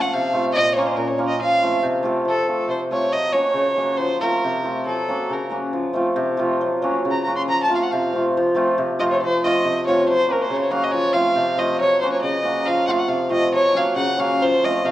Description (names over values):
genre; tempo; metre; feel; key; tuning
balkan folk; 139 BPM; 2/4; straight; F phrygian dominant; A4 = 438 Hz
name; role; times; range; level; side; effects
warm fiddle; melody; 0.0-14.9 s; A4 to C6; -20 LUFS; equal; none
hammered dulcimer; accompaniment; 0.0-14.9 s; Bb2 to Bb4; -21 LUFS; equal; none
room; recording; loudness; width
wet recital hall reverb, RT60 1.8 s; worn, warbling old tape, cassette tape, warbly pitch drift; -18 LUFS; side -14 dB against mid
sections
0.0-2.3 A section; 2.3-9.2 B section; 9.2-14.9 C section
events
fiddle solo 2.3-9.2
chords
0.0 F; 0.5 Bbm; 1.4 F; 3.1 Gb; 4.0 F; 4.9 Gb; 5.7 F; 6.6 Gb; 7.5 F; 10.1 Gb; 10.9 F; 11.8 Gb; 12.7 F; 13.5 Gb; 14.4 F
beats
0.11 | 0.54 0.97 | 1.40 1.84 | 2.27 2.70 | 3.13 3.57 | 4.00 4.43 | 4.87 5.30 | 5.74 6.17 | 6.60 7.04 | 7.47 7.90 | 8.33 8.77 | 9.20 9.63 | 10.06 10.49 | 10.93 11.36 | 11.79 12.22 | 12.66 13.09 | 13.52 13.96 | 14.39 14.82